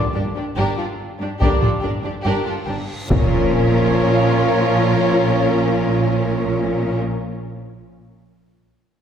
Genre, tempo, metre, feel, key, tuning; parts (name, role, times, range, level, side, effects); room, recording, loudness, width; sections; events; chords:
cinematic, epic orchestral film score; 71 BPM; 4/4; straight; A4 = 439 Hz
warm symphonic violin section; melody; 0.0-7.0 s; G4 to Bb4; -28 LUFS; left 5 dB
rich symphonic viola section; accompaniment; 0.0-7.0 s; Db4 to D4; -27 LUFS; equal
bright trombone section; sustained chords; 0.0-7.0 s; Bb2 to G3; -27 LUFS; right 2 dB
mellow French horn section; sustained chords; 0.0-7.0 s; Bb3 to F4; -25 LUFS; equal
dark trumpet section; stabs; 0.0-7.0 s; Db5 to D5; -26 LUFS; equal
clear symphonic cello section; bass; 0.0-7.0 s; G2 to Bb2; -24 LUFS; right 2 dB
reverse cymbal and impact; sound effects; 2.7-7.0 s; -30 LUFS; equal
warm symphonic violin section; second line; 0.2-7.0 s; D4 to G4; -27 LUFS; equal
rich studio double bass section; bass; 0.2-7.0 s; G1 to Bb1; -24 LUFS; right 1 dB
taiko ensemble; drums; 1.4-4.7 s; -21 LUFS; left 1 dB
wet scoring stage reverb, RT60 2.0 s; heard from further back in the room; -16 LUFS; side -8 dB against mid
0.0-3.1 A section; 3.1-6.5 B section
reverse cymbal 2.7-3.1; impact 3.1-6.5
0.0 Gm; 3.1 Bbm